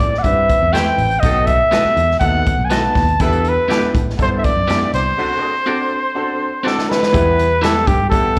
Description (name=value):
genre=uptempo 1960s-style soul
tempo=122 BPM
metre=4/4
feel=straight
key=unclear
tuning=A4 = 440 Hz
part: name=warm trumpet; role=melody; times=0.0-8.4 s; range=G4 to A5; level=-19 LUFS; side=equal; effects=slapback echo
part: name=clear upright piano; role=accompaniment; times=0.0-8.4 s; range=E3 to B4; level=-27 LUFS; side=equal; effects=plate reverb, slapback echo
part: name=vintage muted fingered electric bass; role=bass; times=0.0-8.4 s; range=A1 to A2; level=-22 LUFS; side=equal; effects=none
part: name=swinging big-band drum kit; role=drums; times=0.0-8.4 s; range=hi-hat, kick drum, snare drum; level=-22 LUFS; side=equal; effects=none
part: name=electric guitar at the edge of break-up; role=stabs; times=0.7-7.7 s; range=A3 to E5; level=-26 LUFS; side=equal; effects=plate reverb, slapback echo
part: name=clear horn section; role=second line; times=1.2-5.5 s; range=F#3 to C5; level=-29 LUFS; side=equal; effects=plate reverb, slapback echo
room=moderate club reverb, RT60 0.5 s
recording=live gig heard through the venue's PA, club reverb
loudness=-16 LUFS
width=mono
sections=0.0-7.1 A section; 7.1-8.4 B section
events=break 5.2-7.1; drum fill 6.6-7.1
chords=0.0 Am7; 1.2 B7; 3.2 Em7; 5.2 D7; 7.1 Em